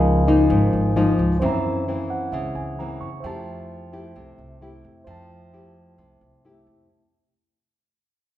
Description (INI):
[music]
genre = bossa nova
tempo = 131 BPM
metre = 4/4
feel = straight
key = F major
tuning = A4 = 440 Hz
[part]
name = mellow tine electric piano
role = accompaniment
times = 0.0-6.9 s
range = Db4 to Db6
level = -28 LUFS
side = right 2 dB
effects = none
[part]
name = nylon-string guitar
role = accompaniment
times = 0.0-6.9 s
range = Gb2 to G4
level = -21 LUFS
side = left 2 dB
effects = none
[part]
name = upright bass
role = bass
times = 0.0-6.9 s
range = Ab1 to Gb2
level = -26 LUFS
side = right 1 dB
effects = none
[sound]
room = wet recital hall reverb, RT60 1.4 s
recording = recorded in a church or concert hall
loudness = -19 LUFS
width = side -13 dB against mid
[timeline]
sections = 0.0-6.9 A section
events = fade-out 0.0-6.9; tine electric piano fill 1.9-3.2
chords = 0.0 Db69; 1.4 Gb7#11; 3.2 Fmaj9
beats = 0.04 0.50 0.96 | 1.42 1.87 2.33 2.79 | 3.25 3.70 4.16 4.62 | 5.07 5.53 5.99 6.45